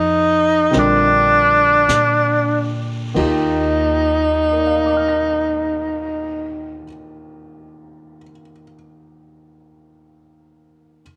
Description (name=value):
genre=jazz ballad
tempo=45-56 BPM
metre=4/4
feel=swing 68% on 8ths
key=Eb major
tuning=A4 = 439 Hz
part: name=breathy tenor saxophone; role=melody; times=0.0-6.8 s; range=D4 to Eb4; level=-18 LUFS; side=equal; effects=none
part: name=warm grand piano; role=accompaniment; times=0.0-11.0 s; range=Eb2 to Bb6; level=-27 LUFS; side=equal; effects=none
part: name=upright bass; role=bass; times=0.0-6.8 s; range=Bb1 to Bb2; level=-28 LUFS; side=equal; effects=none
part: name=jazz brush drum kit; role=drums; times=0.7-4.2 s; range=brushed snare drum, hi-hat, kick drum, ride cymbal, snare drum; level=-34 LUFS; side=equal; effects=none
room=light reverb, small room ambience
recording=none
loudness=-17 LUFS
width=mono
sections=0.0-3.2 A section; 3.2-8.5 B section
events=slowing down 0.0-3.2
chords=0.0 Fm7; 0.7 Bb; 3.2 Ebmaj7